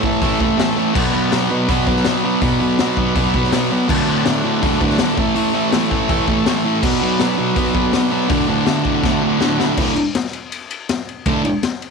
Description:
garage rock duo or trio; 163 BPM; 4/4; straight; D major; A4 = 440 Hz
overdriven combo organ; sustained chords; 0.0-9.8 s; E4 to B5; -26 LUFS; right 1 dB
thick fuzz guitar; riff; 0.0-11.4 s; D2 to B3; -16 LUFS; right 1 dB; distortion
raw garage drum kit; drums; 0.0-11.9 s; crash cymbal, hi-hat, kick drum, ride cymbal, snare drum; -21 LUFS; left 3 dB
light reverb; 1960s-style stereo; -15 LUFS; side -4 dB against mid
0.0-9.8 A section; 9.8-11.9 B section
transistor combo organ fill 3.2-3.9, 9.0-9.8; drum fill 9.0-9.8
0.0 A; 1.0 Bm; 3.9 D; 5.2 A; 6.8 Bm; 8.3 D; 9.8 D5
0.22 0.59 | 0.96 1.32 1.69 2.06 | 2.43 2.79 3.16 3.53 | 3.90 4.26 4.63 5.00 | 5.37 5.73 6.10 6.47 | 6.83 7.20 7.57 7.94 | 8.30 8.67 9.04 9.41 | 9.78 10.15 10.52 10.89 | 11.26 11.63

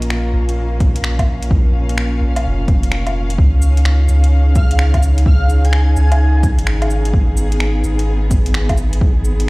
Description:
future garage; 128 BPM; 4/4; swing 65% on 16ths; A4 = 444 Hz
warm studio string section; sustained chords; 0.0-9.5 s; Bb2 to F5; -23 LUFS; equal; sidechain pumping
soft dub sub bass; bass; 0.0-9.5 s; F1 to Db2; -14 LUFS; equal; sidechain pumping
deep house drum kit; drums; 0.0-9.5 s; cabasa, finger snaps, hi-hat, woodblock; -24 LUFS; equal; overdrive, small room ambience
electronic kick drum; drums; 0.8-9.1 s; -15 LUFS; equal; overdrive, small room ambience
airy dreamy lead; melody; 4.6-6.4 s; F5 to Ab5; -28 LUFS; right 1 dB; chorus, tape echo
digital ambience; played on a big sound system in a bare room, stone room reverb; -12 LUFS; side -24 dB against mid
0.0-9.5 A section
0.0 Bbm; 3.4 Dbadd9; 7.1 Abm
0.10 0.57 1.04 | 1.51 1.98 2.45 2.92 | 3.39 3.85 4.32 4.79 | 5.26 5.73 6.20 6.67 | 7.14 7.60 8.07 8.54 | 9.01 9.48

